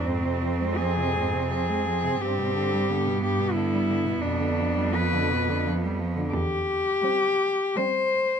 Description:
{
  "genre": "classical, lyrical piece for cello ensemble",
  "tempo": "77-92 BPM",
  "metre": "3/4",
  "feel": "rubato",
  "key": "unclear",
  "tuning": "A4 = 440 Hz",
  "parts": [
    { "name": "warm cello", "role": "melody", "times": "0.0-8.4 s", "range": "C4 to C5", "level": "-26 LUFS", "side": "left 3 dB", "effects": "none" },
    { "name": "rich cello", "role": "second line", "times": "0.0-8.3 s", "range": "B3 to C4", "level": "-31 LUFS", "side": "right 9 dB", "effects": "none" },
    { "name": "rich cello", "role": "accompaniment", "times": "0.0-8.3 s", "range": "G2 to Ab3", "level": "-31 LUFS", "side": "equal", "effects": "none" },
    { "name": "clear cello", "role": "bass", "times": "0.0-6.9 s", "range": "E2 to G2", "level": "-29 LUFS", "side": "right 2 dB", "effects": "none" }
  ],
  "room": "light reverb",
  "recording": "close, detailed microphones",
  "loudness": "-23 LUFS",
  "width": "side -7 dB against mid",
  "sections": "0.0-8.4 A section",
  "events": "none",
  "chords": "0.0 Fm; 2.2 G; 4.2 G7/F; 6.3 C/E",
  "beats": "| 0.04 0.79 1.50 | 2.21 2.90 3.56 | 4.23 4.95 5.65 | 6.33 7.03 7.77"
}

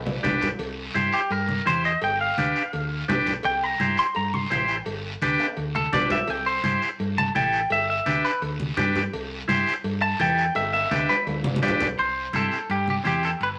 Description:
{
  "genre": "latin, cumbia",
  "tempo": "169 BPM",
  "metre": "4/4",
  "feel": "straight",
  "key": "C major",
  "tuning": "A4 = 443 Hz",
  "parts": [
    { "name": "clean electric guitar", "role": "melody", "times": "0.0-13.5 s", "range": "G4 to C6", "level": "-26 LUFS", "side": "equal", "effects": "spring reverb" },
    { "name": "hollow-body short-scale fingered electric bass", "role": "bass", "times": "0.0-13.6 s", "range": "G1 to G2", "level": "-33 LUFS", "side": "equal", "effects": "none" },
    { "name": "congas", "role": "percussion", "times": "0.1-13.2 s", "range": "none", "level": "-33 LUFS", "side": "equal", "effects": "none" },
    { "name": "timbales and cowbell", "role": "percussion", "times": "0.1-13.6 s", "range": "none", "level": "-37 LUFS", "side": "equal", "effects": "none" },
    { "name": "combo organ", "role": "accompaniment", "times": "0.2-13.3 s", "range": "C4 to C5", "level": "-27 LUFS", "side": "equal", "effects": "none" },
    { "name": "guiro", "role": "percussion", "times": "0.2-13.6 s", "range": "none", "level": "-39 LUFS", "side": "equal", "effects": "none" }
  ],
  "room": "moderate studio reverb, RT60 0.6 s",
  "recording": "none",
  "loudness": "-24 LUFS",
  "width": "mono",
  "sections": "0.6-12.0 A section; 12.0-13.6 B section",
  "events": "drum fill 0.0-0.6, 5.4-6.3, 10.6-12.0; clean electric guitar solo 0.6-12.0",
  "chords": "0.0 G; 0.6 C; 2.0 G7; 3.4 C; 4.9 G; 6.3 C; 7.7 G; 9.1 C; 10.6 G; 12.0 C",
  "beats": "0.24 | 0.60 0.96 1.31 1.67 | 2.02 2.38 2.73 3.09 | 3.44 3.80 4.16 4.51 | 4.87 5.22 5.58 5.93 | 6.29 6.64 7.00 7.36 | 7.71 8.07 8.42 8.78 | 9.13 9.49 9.85 10.20 | 10.56 10.91 11.27 11.62 | 11.98 12.34 12.69 13.05 | 13.41"
}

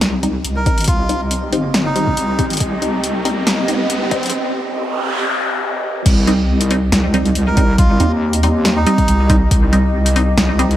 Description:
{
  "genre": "deep dubstep",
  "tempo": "139 BPM",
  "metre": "4/4",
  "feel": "swing 54% on 16ths, half-time",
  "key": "C minor",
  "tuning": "A4 = 440 Hz",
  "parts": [
    { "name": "granular cloud pad", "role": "sustained chords", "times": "0.0-10.8 s", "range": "C4 to Eb5", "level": "-24 LUFS", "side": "equal", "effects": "built-in reverb" },
    { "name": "wobble bass", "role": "bass", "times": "0.0-10.8 s", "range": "G1 to Eb2", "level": "-17 LUFS", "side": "equal", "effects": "chorus" },
    { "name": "deep house drum kit", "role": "drums", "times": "0.0-10.8 s", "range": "crash cymbal, hi-hat, snare drum", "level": "-20 LUFS", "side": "left 1 dB", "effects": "overdrive" },
    { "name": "riser and noise sweep", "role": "sound effects", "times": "1.5-6.1 s", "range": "none", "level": "-24 LUFS", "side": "equal", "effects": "none" },
    { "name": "filtered dub chord stab", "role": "stabs", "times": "0.2-10.8 s", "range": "G3 to Eb4", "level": "-21 LUFS", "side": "equal", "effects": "phaser, dub echo" },
    { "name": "melodica", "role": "melody", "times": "0.6-2.5, 7.5-9.4 s", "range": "Eb4 to Bb4", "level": "-24 LUFS", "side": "right 1 dB", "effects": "dub echo" },
    { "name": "electronic kick drum", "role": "drums", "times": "0.7-9.6 s", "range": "none", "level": "-15 LUFS", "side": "equal", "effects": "overdrive" }
  ],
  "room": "light reverb, digital ambience",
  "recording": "vinyl crackle, high-pass filter",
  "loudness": "-13 LUFS",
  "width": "side -13 dB against mid",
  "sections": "0.0-6.1 A section; 6.1-10.8 B section",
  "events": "build-up 0.0-6.1; filter sweep on synth stab 0.0-6.1; riser 1.5-4.3; break 4.3-6.1; noise sweep 4.3-6.1; drop 6.1-10.8",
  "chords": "0.0 Cm",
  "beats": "0.01 0.45 | 0.88 1.31 1.74 2.17 | 2.60 3.04 3.47 3.90 | 4.33 4.76 5.19 5.63 | 6.06 6.49 6.92 7.35 | 7.78 8.22 8.65 9.08 | 9.51 9.94 10.37"
}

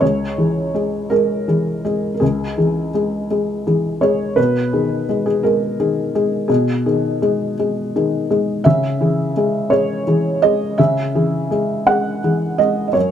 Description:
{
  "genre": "neoclassical minimalist piano",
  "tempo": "56 BPM (dotted quarters)",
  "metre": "6/8",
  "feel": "rubato",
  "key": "C# dorian",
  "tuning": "A4 = 440 Hz",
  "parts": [
    { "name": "felt-muted upright piano", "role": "solo", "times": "0.0-13.1 s", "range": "C#2 to F#5", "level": "-15 LUFS", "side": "equal", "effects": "none" }
  ],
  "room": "little or no reverb",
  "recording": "close, detailed microphones",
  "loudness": "-15 LUFS",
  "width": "side -9 dB against mid",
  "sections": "0.0-13.1 A section",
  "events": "none",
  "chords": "0.0 C#m; 4.4 G#m/B; 8.6 C#m",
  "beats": "| 0.02 1.11 | 2.21 3.30 | 4.37 5.44 | 6.49 7.57 | 8.65 9.71 | 10.79 11.86 | 12.95"
}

